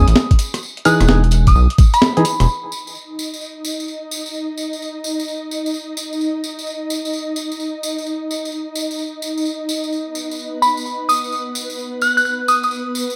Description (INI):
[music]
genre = UK garage, two-step garage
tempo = 129 BPM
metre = 4/4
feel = swing 65% on 16ths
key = unclear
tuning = A4 = 440 Hz
[part]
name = glassy synth bell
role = melody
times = 0.0-2.5, 10.6-12.7 s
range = B5 to F#6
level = -20 LUFS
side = equal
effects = chorus, tremolo, digital delay
[part]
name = percussive organ stab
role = stabs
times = 0.0-2.2 s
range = E3 to G#4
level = -20 LUFS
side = equal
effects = subtle chorus, digital delay
[part]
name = rubbery square bass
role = bass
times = 0.0-2.5 s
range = E1 to B1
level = -15 LUFS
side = equal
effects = none
[part]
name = breakbeat sampler-style drum kit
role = drums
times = 0.1-2.5 s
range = hi-hat, rim click, snare drum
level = -21 LUFS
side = equal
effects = low-pass filter on hats, low-pass filter on snare, low-pass filter on room
[part]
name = tambourine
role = percussion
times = 0.1-13.2 s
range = none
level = -31 LUFS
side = equal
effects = none
[part]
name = electronic kick drum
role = drums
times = 0.3-1.9 s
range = none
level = -13 LUFS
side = equal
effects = none
[part]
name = ethereal airy pad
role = sustained chords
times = 3.1-13.2 s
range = B3 to D#5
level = -27 LUFS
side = equal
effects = ensemble chorus, built-in reverb, sidechain pumping
[sound]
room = light reverb, digital ambience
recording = none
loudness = -19 LUFS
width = mono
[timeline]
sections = 0.0-2.5 A section; 2.5-13.2 B section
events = band accent 2.0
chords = 0.4 Emaj7; 2.5 N.C.